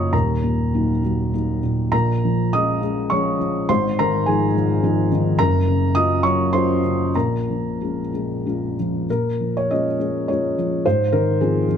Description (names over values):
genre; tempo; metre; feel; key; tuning
neoclassical minimalist piano; 92-110 BPM; 3/4; rubato; Bb minor; A4 = 441 Hz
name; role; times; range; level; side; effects
felt-muted upright piano; solo; 0.0-11.8 s; Eb1 to Eb6; -18 LUFS; equal; none
room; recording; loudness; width
light reverb; close, detailed microphones; -18 LUFS; side -8 dB against mid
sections
0.0-9.1 A section; 9.1-11.8 B section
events
none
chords
0.1 Ebm; 1.9 Bbm7; 3.7 Fm7/Ab; 5.4 Gbmaj7; 7.1 Bbm7; 10.8 Fm7/Ab